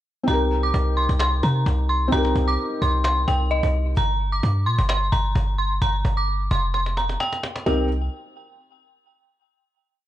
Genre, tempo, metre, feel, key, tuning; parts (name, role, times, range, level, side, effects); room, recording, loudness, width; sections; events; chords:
hip hop, trap; 130 BPM; 4/4; half-time; C minor; A4 = 441 Hz
felt-muted upright piano; accompaniment; 0.2-4.0, 7.7-7.9 s; C4 to Bb4; -26 LUFS; left 1 dB
dark detuned synth bell; melody; 0.3-7.9 s; Eb5 to D6; -25 LUFS; equal; chorus, ping-pong delay
warm 808-style bass; bass; 0.3-8.1 s; F1 to C3; -22 LUFS; equal
cajon; drums; 0.3-7.8 s; -29 LUFS; equal
little or no reverb; -19 LUFS; side -13 dB against mid
0.3-7.7 verse; 7.7-9.5 final chord
drum fill 6.7-7.7
0.3 Cm7; 4.0 Gm; 7.7 Cm7